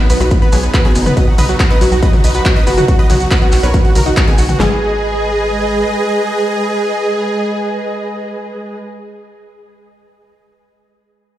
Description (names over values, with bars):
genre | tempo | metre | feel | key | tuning
uplifting trance | 140 BPM | 4/4 | straight | G# minor | A4 = 440 Hz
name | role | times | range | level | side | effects
dense compressed supersaw | melody | 0.0-8.8 s | B3 to D#5 | -18 LUFS | right 1 dB | sidechain pumping, digital delay
wide unison pluck | second line | 0.0-9.5 s | B4 to D#6 | -27 LUFS | equal | sidechain pumping, digital delay
dark symphonic string section | sustained chords | 0.0-8.8 s | F#3 to D#5 | -21 LUFS | right 1 dB | sidechain pumping
analog pluck | arpeggios | 0.1-4.8 s | F#3 to B4 | -20 LUFS | left 2 dB | chorus, sidechain pumping, digital delay
tight sequencer bass | bass | 0.1-5.8 s | F#1 to B1 | -17 LUFS | equal | sidechain pumping
big-room dance drum kit | drums | 0.1-4.6 s | handclaps, hi-hat, toms | -20 LUFS | left 1 dB | sidechain pumping on hats, sidechain pumping on toms
maracas | percussion | 0.1-4.6 s | none | -29 LUFS | right 3 dB | none
big-room dance drum kit | drums | 0.3-4.7 s | handclaps, kick drum, snare drum | -12 LUFS | equal | none
room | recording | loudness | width
digital ambience | played on a big sound system in a bare room, stone room reverb | -11 LUFS | side -13 dB against mid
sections
0.0-4.6 A section; 4.6-8.0 B section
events
drop 0.0-4.6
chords
0.0 B; 4.6 G#m